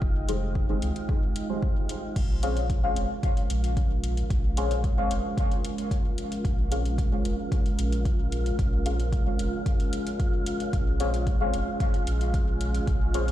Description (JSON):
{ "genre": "dub techno", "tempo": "112 BPM", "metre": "4/4", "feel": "straight", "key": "unclear", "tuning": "A4 = 444 Hz", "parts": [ { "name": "dark analog pad", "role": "sustained chords", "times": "0.0-13.3 s", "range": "Ab3 to G5", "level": "-34 LUFS", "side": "right 2 dB", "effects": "chorus, sidechain pumping" }, { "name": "warm sub bass", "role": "bass", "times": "0.0-13.3 s", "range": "F1 to C2", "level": "-28 LUFS", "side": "equal", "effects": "sidechain pumping" }, { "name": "electronic kick drum", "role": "drums", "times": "0.0-13.0 s", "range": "none", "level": "-26 LUFS", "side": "equal", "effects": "overdrive" }, { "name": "wind-like tuned noise texture", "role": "texture", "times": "0.0-13.3 s", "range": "F4", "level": "-39 LUFS", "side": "right 2 dB", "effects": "built-in reverb, sidechain pumping" }, { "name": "deep mellow chord stab", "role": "stabs", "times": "0.3-13.3 s", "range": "Eb4 to F5", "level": "-32 LUFS", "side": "left 2 dB", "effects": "chorus, phaser, cassette tape, sidechain pumping, dub echo" }, { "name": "soft vintage rhythm box", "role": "drums", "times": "0.3-13.3 s", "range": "crash cymbal, hi-hat", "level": "-42 LUFS", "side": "left 2 dB", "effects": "none" } ], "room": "little or no reverb", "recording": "played on a big sound system in a bare room, large studio reverb", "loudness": "-24 LUFS", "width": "side -13 dB against mid", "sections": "0.0-13.3 A section", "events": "none", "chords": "0.0 Fm7; 2.2 Bbm7" }